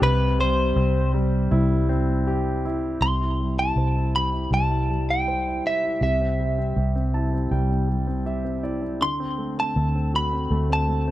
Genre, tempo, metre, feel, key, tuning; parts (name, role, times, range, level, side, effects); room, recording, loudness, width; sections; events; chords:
pop ballad; 80 BPM; 4/4; straight; C major; A4 = 439 Hz
direct-recorded clean electric guitar; melody; 0.0-11.1 s; B4 to C6; -25 LUFS; equal
clear concert grand piano; accompaniment; 0.0-11.1 s; C3 to A5; -26 LUFS; left 1 dB
vintage muted fingered electric bass; bass; 0.0-11.1 s; C2 to D2; -23 LUFS; equal
studio ambience; dry, close 1970s-style studio recording; -21 LUFS; side -14 dB against mid
0.0-3.0 A section; 3.0-11.1 B section
grand piano fill 6.8-9.0
0.0 C; 9.0 D7